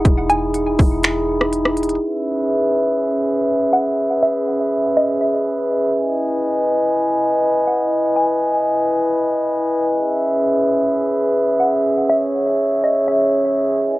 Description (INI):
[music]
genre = hip hop, atmospheric cloud-rap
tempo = 122 BPM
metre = 4/4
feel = half-time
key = C# minor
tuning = A4 = 438 Hz
[part]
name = hollow square pluck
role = melody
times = 0.0-13.3 s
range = D#5 to G#5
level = -21 LUFS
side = equal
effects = chorus, cassette tape, analog delay
[part]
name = glass harmonica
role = sustained chords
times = 0.0-14.0 s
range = C#4 to G#5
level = -16 LUFS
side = equal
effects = sidechain pumping, cassette tape
[part]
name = soft 808-style bass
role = bass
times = 0.0-2.0 s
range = E1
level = -27 LUFS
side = equal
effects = none
[part]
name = trap drum kit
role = drums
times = 0.0-2.0 s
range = finger snaps, hi-hat, kick drum, rim click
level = -15 LUFS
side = equal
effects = overdrive, cassette tape
[sound]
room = light reverb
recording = home recording on cassette, low-pass filter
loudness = -16 LUFS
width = side -18 dB against mid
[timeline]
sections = 0.0-2.0 A section; 2.0-14.0 B section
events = filter sweep 2.0-14.0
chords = 0.0 Emaj7; 2.0 C#m7; 6.0 Emaj7; 9.9 C#m7